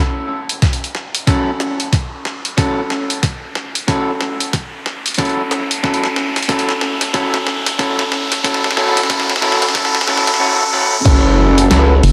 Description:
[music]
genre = glitch hop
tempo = 92 BPM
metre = 4/4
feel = swing 61% on 16ths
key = F# minor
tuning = A4 = 440 Hz
[part]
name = riser and impact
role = sound effects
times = 0.2-12.1 s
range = none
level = -25 LUFS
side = equal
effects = none
[part]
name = boom bap sampler-style drum kit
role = drums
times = 0.5-12.1 s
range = crash cymbal, hi-hat, snare drum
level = -22 LUFS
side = equal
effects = high-pass filter on snare, studio reverb, high-pass filter on hats, high-pass filter on cymbals
[part]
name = electronic kick drum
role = drums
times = 0.6-11.2 s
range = none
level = -18 LUFS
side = equal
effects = studio reverb
[part]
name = electric guitar at the edge of break-up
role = stabs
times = 1.3-11.9 s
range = C#4 to A4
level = -20 LUFS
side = equal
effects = spring reverb, sidechain pumping, tape echo
[part]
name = growl bass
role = bass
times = 11.1-12.0 s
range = F#1 to C#2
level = -15 LUFS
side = equal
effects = chorus, tube saturation
[part]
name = rubbery square bass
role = bass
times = 12.0-12.1 s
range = F#1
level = -11 LUFS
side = equal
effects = none
[sound]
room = wet plate reverb, RT60 2.3 s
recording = dreamy mix soaked in reverb, high-pass filter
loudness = -16 LUFS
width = mono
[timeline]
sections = 0.0-11.1 A section; 11.1-12.1 B section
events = build-up 0.0-11.1; drum fill 0.0-10.4; filter sweep on clean electric guitar 0.0-11.1; filter sweep 0.0-11.1; riser 0.2-11.1; drop 11.1-12.1; impact 11.1-12.1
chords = 0.0 F#m7

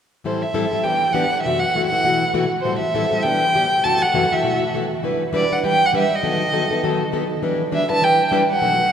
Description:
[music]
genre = jazz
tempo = 201 BPM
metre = 4/4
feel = swing 58% on 8ths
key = E minor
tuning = A4 = 439 Hz
[part]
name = picked plugged-in steel-string acoustic guitar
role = accompaniment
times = 0.2-8.8 s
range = F#2 to B4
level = -20 LUFS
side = left 1 dB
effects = none
[part]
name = warm violin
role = melody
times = 0.3-8.9 s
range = C5 to A5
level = -19 LUFS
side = right 1 dB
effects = none
[sound]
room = wet cathedral reverb, RT60 4.3 s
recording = recorded in a church or concert hall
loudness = -17 LUFS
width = side -8 dB against mid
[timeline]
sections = 0.2-5.0 A section; 5.0-8.9 B section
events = none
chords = 0.2 Am7; 0.8 Em9; 1.4 F#m7b5; 2.0 B7sus4; 2.6 Am7; 3.2 Em7; 3.8 F#m7b5; 4.4 B7sus4; 5.0 Em7; 6.2 B7/D#; 7.4 Em7

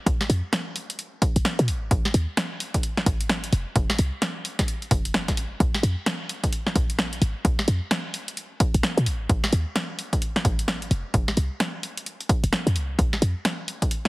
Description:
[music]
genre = UK garage, two-step garage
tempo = 130 BPM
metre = 4/4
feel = swing 61% on 16ths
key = unclear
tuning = A4 = 440 Hz
[part]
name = short 808-style bass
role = bass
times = 0.1-13.3 s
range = F1 to Bb2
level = -23 LUFS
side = equal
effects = none
[part]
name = electronic kick drum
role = drums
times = 0.1-13.9 s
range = none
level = -24 LUFS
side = equal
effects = none
[part]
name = punchy analog drum machine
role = drums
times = 0.1-14.1 s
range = hi-hat, snare drum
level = -26 LUFS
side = equal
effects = none
[sound]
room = digital ambience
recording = heavily compressed radio sound, multiband compression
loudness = -22 LUFS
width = side -22 dB against mid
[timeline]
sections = 0.0-14.1 A section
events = none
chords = none

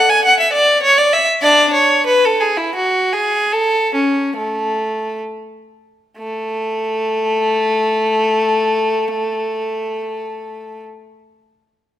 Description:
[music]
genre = classical, baroque-style suite movement for unaccompanied violin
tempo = 61-103 BPM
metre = 3/4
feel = rubato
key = A major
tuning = A4 = 440 Hz
[part]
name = rich violin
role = solo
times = 0.0-10.8 s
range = A3 to G#5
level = -14 LUFS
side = equal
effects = none
[sound]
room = moderate recital hall reverb, RT60 1.5 s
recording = none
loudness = -13 LUFS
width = side -12 dB against mid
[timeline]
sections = 0.0-6.2 A section; 6.2-11.7 B section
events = slowing down 0.5-6.2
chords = none

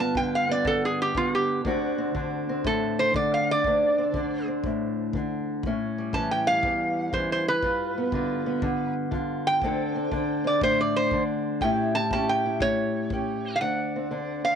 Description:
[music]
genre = acoustic country blues, solo or duo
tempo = 120 BPM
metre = 4/4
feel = swing 65% on 8ths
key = unclear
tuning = A4 = 440 Hz
[part]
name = lap resonator guitar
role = melody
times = 0.0-14.6 s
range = F4 to A5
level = -25 LUFS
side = right 1 dB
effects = none
[part]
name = fingerpicked steel-string acoustic guitar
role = accompaniment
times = 0.0-14.6 s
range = D2 to A4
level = -27 LUFS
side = left 1 dB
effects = none
[part]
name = kick drum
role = drums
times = 0.2-13.3 s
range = none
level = -35 LUFS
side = left 2 dB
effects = none
[sound]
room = moderate spring reverb, RT60 1.8 s, small room reverb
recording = 1960s-style stereo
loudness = -23 LUFS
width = side -7 dB against mid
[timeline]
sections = 0.0-13.6 A section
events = resonator guitar played with a steel bar solo 0.0-13.6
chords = 0.0 G7; 1.7 D7; 5.6 A7; 7.6 G7; 9.6 D5; 11.6 A7; 13.6 D7

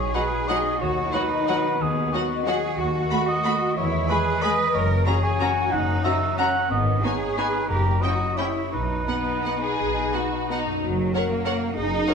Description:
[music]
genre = classical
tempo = 162-202 BPM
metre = 3/4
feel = rubato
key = B major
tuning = A4 = 438 Hz
[part]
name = mellow cor anglais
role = second line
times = 0.0-10.6 s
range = F#4 to G#5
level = -26 LUFS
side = right 1 dB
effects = none
[part]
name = concert harp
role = arpeggios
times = 0.0-12.1 s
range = F#2 to D#5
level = -29 LUFS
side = left 7 dB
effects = none
[part]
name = rich symphonic cello section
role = bass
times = 0.0-12.1 s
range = F#3 to B4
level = -28 LUFS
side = right 2 dB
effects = none
[part]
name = rich symphonic double bass section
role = bass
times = 0.0-12.0 s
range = F#1 to E2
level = -29 LUFS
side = right 1 dB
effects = none
[part]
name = clear symphonic violin section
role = melody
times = 0.1-12.1 s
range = F#5 to B5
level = -32 LUFS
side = left 3 dB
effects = none
[part]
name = warm symphonic violin section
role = second line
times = 0.1-12.1 s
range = B3 to C#5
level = -31 LUFS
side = left 2 dB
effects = none
[part]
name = rich symphonic viola section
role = accompaniment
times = 0.2-12.1 s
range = F#3 to A#4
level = -33 LUFS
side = right 3 dB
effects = none
[part]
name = timpani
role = percussion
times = 4.7-5.2, 7.7-8.2 s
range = F#2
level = -30 LUFS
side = left 3 dB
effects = none
[part]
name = warm French horn section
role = sustained chords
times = 10.8-12.1 s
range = F#4 to A#4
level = -29 LUFS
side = left 2 dB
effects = none
[sound]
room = wet scoring stage reverb, RT60 1.5 s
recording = minimal, uncompressed stereo recording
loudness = -21 LUFS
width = side -6 dB against mid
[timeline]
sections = 0.0-10.8 A section; 10.8-12.1 B section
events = none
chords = 0.0 B; 0.8 B/D#; 2.8 B7/D#; 3.8 E; 4.7 F#; 6.7 G#m; 7.7 F#7b9; 8.7 B; 10.8 F#

